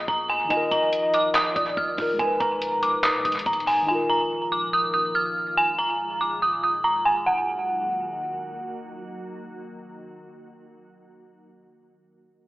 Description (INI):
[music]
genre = hip hop, trap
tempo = 142 BPM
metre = 4/4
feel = half-time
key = Eb minor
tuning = A4 = 440 Hz
[part]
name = dark detuned synth bell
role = melody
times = 0.0-8.5 s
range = Gb5 to F6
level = -22 LUFS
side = equal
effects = chorus, phaser, low-pass filter, tape echo
[part]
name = warm velvety synth lead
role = second line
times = 0.0-1.8 s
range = D5 to Eb5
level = -26 LUFS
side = left 1 dB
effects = chorus, tape echo
[part]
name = muted felt-like synth keys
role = accompaniment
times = 0.0-5.6 s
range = Eb3 to Eb5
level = -29 LUFS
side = left 1 dB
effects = chorus, low-pass filter
[part]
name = clean 808-style bass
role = bass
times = 0.0-3.9 s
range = Eb1 to D2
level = -47 LUFS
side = equal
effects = none
[part]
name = dusty soul sampler-style drum kit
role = drums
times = 0.1-3.8 s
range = handclaps, hi-hat, kick drum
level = -30 LUFS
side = equal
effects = tape echo
[part]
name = glassy FM pad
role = sustained chords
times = 0.8-11.2 s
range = Bb2 to Gb4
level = -40 LUFS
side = left 1 dB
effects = ensemble chorus, built-in reverb
[sound]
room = little or no reverb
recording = echo-heavy mix, telephone sound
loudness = -21 LUFS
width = side -18 dB against mid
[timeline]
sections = 0.0-7.3 A section; 7.3-10.6 B section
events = break 0.0-0.5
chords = 0.0 Bb7sus4; 0.5 Ebsus2; 2.2 Abmadd9; 3.9 Ebsus2; 5.6 Bb7sus4; 7.3 Ebm